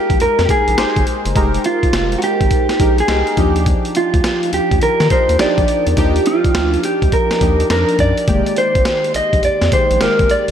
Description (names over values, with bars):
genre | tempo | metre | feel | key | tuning
R&B, new jack swing | 104 BPM | 4/4 | swing 65% on 16ths | F dorian | A4 = 439 Hz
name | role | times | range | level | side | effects
mellow electric guitar | melody | 0.0-10.5 s | F4 to Eb5 | -16 LUFS | right 1 dB | none
warm analog keys | accompaniment | 0.0-10.5 s | Eb3 to C5 | -20 LUFS | equal | chorus, phaser, slapback echo
round analog bass | bass | 0.1-10.5 s | F1 to Eb3 | -19 LUFS | equal | none
boom bap sampler-style drum kit | drums | 0.1-10.5 s | hi-hat, kick drum, snare drum | -18 LUFS | equal | none
room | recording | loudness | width
moderate lush hall reverb, RT60 1.9 s | big arena sound | -12 LUFS | side -9 dB against mid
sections
0.0-10.5 A section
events
none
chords
0.0 Fm11; 3.4 Ebmaj9; 8.3 Fm11